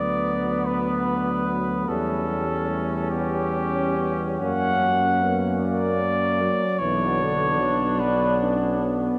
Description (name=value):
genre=classical, hymn-like piece for brass band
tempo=45-51 BPM (dotted quarters)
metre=6/8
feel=rubato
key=B minor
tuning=A4 = 440 Hz
part: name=warm cornet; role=melody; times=0.0-8.4 s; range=G4 to F#5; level=-28 LUFS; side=equal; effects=none
part: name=warm flugelhorn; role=second line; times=0.0-9.2 s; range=B3 to D4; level=-31 LUFS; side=equal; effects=none
part: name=clear trombone section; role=accompaniment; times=0.0-9.2 s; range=F#3 to B3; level=-32 LUFS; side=equal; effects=none
part: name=mellow trombone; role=accompaniment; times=0.0-9.2 s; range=D3 to D4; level=-32 LUFS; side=equal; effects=none
part: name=warm tuba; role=bass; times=0.0-9.2 s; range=B1 to F#2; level=-30 LUFS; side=equal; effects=none
room=wet cathedral reverb, RT60 4.2 s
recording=none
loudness=-23 LUFS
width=mono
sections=0.0-9.2 A section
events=none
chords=0.0 Bm/D; 1.9 C#dim/E; 4.4 F#; 6.8 Bm